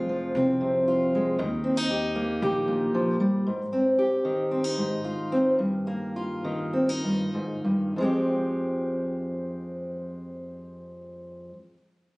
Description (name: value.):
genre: acoustic folk duo or small band.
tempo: 93-116 BPM.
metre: 4/4.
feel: straight.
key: F minor.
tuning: A4 = 441 Hz.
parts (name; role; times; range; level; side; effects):
fingerpicked steel-string acoustic guitar; accompaniment; 0.0-11.6 s; F2 to G4; -24 LUFS; equal; none.
upright bass; bass; 0.0-3.4 s; F1 to Eb2; -32 LUFS; equal; none.
room: moderate large studio reverb, RT60 1.4 s.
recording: recorded on a phone in the room, studio reverb, compression.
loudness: -24 LUFS.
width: side -26 dB against mid.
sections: 0.0-8.0 A section; 8.0-12.2 B section.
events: slowing down 3.5-8.0.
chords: 0.0 Fm; 1.4 Eb; 3.5 Ab6; 5.6 Eb/G; 8.0 Fmadd9.